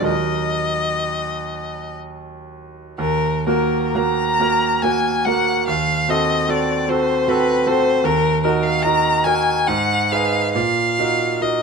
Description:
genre	classical, romantic duo for violin and grand piano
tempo	60-79 BPM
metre	3/4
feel	rubato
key	Eb minor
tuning	A4 = 440 Hz
part	rich violin	melody	0.0-11.6 s	Bb4 to Bb5	-19 LUFS	left 3 dB	none
part	bright grand piano	accompaniment	0.0-11.6 s	Eb2 to Cb5	-20 LUFS	right 3 dB	none
room	light reverb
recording	dark, warm production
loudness	-16 LUFS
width	side -5 dB against mid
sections	0.0-3.0 A section; 3.0-11.6 B section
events	none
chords	0.1 Ebm; 5.7 Ebdim7; 8.0 Ebm; 9.7 Abm7; 10.5 Ebm/Bb

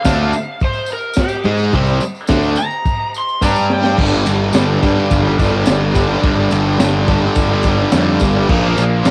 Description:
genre	garage rock duo or trio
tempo	107 BPM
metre	4/4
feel	straight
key	G minor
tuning	A4 = 441 Hz
part	overdriven slide guitar	melody	0.0-4.0 s	G4 to C6	-23 LUFS	equal	cassette tape, analog delay
part	fuzz guitar	riff	0.0-9.1 s	G2 to Ab4	-18 LUFS	equal	distortion, cassette tape
part	tambourine	percussion	0.0-9.1 s	none	-36 LUFS	equal	none
part	fuzz picked electric bass	bass	0.1-9.1 s	G1 to Ab2	-20 LUFS	equal	overdrive
part	crunchy breakbeat drum kit	drums	0.1-9.1 s	crash cymbal, kick drum, ride cymbal, snare drum	-21 LUFS	equal	none
room	little or no reverb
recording	home recording on cassette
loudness	-15 LUFS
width	mono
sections	0.0-4.0 A section; 4.0-9.1 B section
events	electric slide guitar solo 0.0-4.0; drum fill 3.4-4.0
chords	0.0 C5; 3.4 G5; 8.5 Bb5

